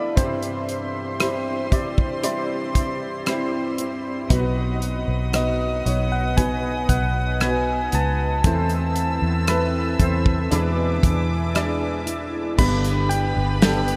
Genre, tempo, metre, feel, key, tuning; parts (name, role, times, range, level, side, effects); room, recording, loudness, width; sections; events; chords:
pop ballad; 58 BPM; 4/4; straight; A4 = 444 Hz
soft struck synth lead; melody; 0.0-14.0 s; C5 to B5; -31 LUFS; equal; chorus, diffuse ambient delay
warm grand piano; accompaniment; 0.0-14.0 s; G2 to D5; -28 LUFS; equal; ensemble chorus
rich studio string section; sustained chords; 0.0-14.0 s; B3 to E6; -33 LUFS; equal
flamenco guitar; arpeggios; 0.0-14.0 s; E2 to G4; -35 LUFS; equal; diffuse ambient delay
modern studio drum kit; drums; 0.2-14.0 s; crash cymbal, hi-hat, kick drum, rim click, snare drum; -24 LUFS; equal
vintage muted fingered electric bass; bass; 4.3-14.0 s; G1 to E2; -26 LUFS; equal
rich studio violin section; second line; 12.6-14.0 s; B4 to B5; -34 LUFS; equal
wet huge ambient reverb, RT60 8.1 s; dreamy mix soaked in reverb; -22 LUFS; mono
0.0-12.6 A section; 12.6-14.0 B section
0.2 C; 4.3 B; 8.4 Am/E; 10.5 E7; 12.6 G